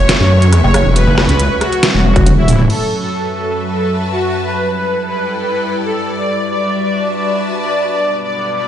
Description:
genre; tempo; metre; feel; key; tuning
heavy wobble dubstep; 138 BPM; 4/4; half-time; F# phrygian; A4 = 440 Hz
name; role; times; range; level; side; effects
soft supersaw; melody; 0.0-8.7 s; E4 to D5; -17 LUFS; equal; digital delay
evolving wavetable pad; sustained chords; 0.0-8.7 s; F#2 to B4; -21 LUFS; left 1 dB; phaser, built-in reverb, sidechain pumping
rich studio string section; texture; 0.0-8.7 s; G3 to C#6; -24 LUFS; left 2 dB; sidechain pumping
dubstep drum kit; drums; 0.1-2.8 s; crash cymbal, hi-hat, rim click, snare drum, toms; -15 LUFS; equal; none
wobble bass; bass; 0.2-2.7 s; E1 to F#2; -11 LUFS; equal; chorus, overdrive
pulsing pluck wobble bass; bass; 0.6-1.3 s; F#1; -12 LUFS; equal; chorus, overdrive
electronic kick drum; drums; 2.2 s; none; -14 LUFS; equal; overdrive
room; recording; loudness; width
light reverb; played on a big sound system in a bare room, large studio reverb, nothing above 10.7 kHz; -12 LUFS; side -10 dB against mid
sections
0.0-2.7 A section; 2.7-8.7 B section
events
drop 0.0-2.7; drum fill 1.8-2.7; filter sweep on ambient pad 2.7-8.7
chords
0.0 F#m; 4.4 Em/G; 6.2 G; 7.9 Bm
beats
0.09 0.53 | 0.96 1.39 1.83 2.26 | 2.70 3.13 3.57 4.00 | 4.44 4.87 5.31 5.74 | 6.18 6.61 7.05 7.48 | 7.92 8.35

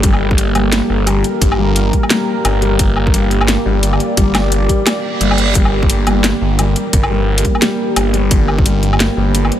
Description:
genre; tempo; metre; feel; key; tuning
half-time drum and bass; 174 BPM; 4/4; swing 59% on 16ths, half-time; G minor; A4 = 440 Hz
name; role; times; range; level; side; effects
deep dark ambient pad; sustained chords; 0.0-9.6 s; Bb3 to D5; -19 LUFS; right 2 dB; chorus, built-in reverb, vintage 12-bit sampler grit, sidechain pumping
felt-muted upright piano; arpeggios; 0.0-9.6 s; G3; -20 LUFS; left 4 dB; vintage 12-bit sampler grit, diffuse ambient delay
phased detuned saw bass; bass; 0.0-9.5 s; G1; -16 LUFS; equal; phaser
drum and bass drum kit; drums; 0.0-9.6 s; hi-hat, snare drum, woodblock; -18 LUFS; left 1 dB; overdrive, studio reverb
electronic kick drum; drums; 0.0-8.6 s; none; -14 LUFS; equal; studio reverb
reverse cymbal; sound effects; 5.0-5.6 s; none; -25 LUFS; right 6 dB; none
room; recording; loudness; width
light reverb; none; -11 LUFS; side -11 dB against mid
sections
0.0-9.6 A section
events
reverse cymbal 5.0-5.6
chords
0.0 Gm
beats
| 0.04 0.38 0.73 1.07 | 1.42 1.76 2.10 2.45 | 2.79 3.14 3.48 3.83 | 4.17 4.52 4.86 5.21 | 5.55 5.90 6.24 6.59 | 6.93 7.28 7.62 7.97 | 8.31 8.66 9.00 9.35

